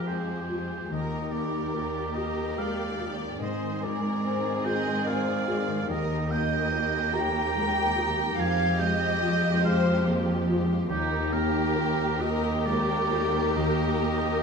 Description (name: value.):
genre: cinematic.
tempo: 48 BPM (dotted quarters).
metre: 6/8.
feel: rubato.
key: Eb major.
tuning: A4 = 440 Hz.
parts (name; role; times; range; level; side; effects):
rich symphonic violin section; melody; 0.0-14.4 s; G4 to Ab4; -36 LUFS; equal; none.
clear oboe; second line; 0.0-14.4 s; G4 to Bb5; -31 LUFS; right 3 dB; none.
warm symphonic violin section; second line; 0.0-14.4 s; Eb4 to G5; -33 LUFS; right 1 dB; none.
dark grand piano; accompaniment; 0.0-14.4 s; Eb2 to G5; -32 LUFS; left 2 dB; none.
warm symphonic viola section; accompaniment; 0.0-14.4 s; Eb3 to G4; -33 LUFS; right 1 dB; none.
concert harp; arpeggios; 0.0-14.4 s; Ab2 to C6; -34 LUFS; left 3 dB; none.
warm symphonic cello section; bass; 0.0-14.4 s; Eb2 to Ab2; -31 LUFS; equal; none.
room: wet stone room reverb, RT60 1.3 s.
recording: none.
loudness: -24 LUFS.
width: side -5 dB against mid.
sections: 0.0-14.4 A section.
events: none.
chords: 0.0 Fmadd9; 0.9 Eb; 3.4 Ab; 5.9 Eb; 8.4 Fmadd9; 10.9 Eb.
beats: | 0.92 2.17 | 3.41 4.66 | 5.89 7.14 | 8.38 9.65 | 10.91 12.21 | 13.56.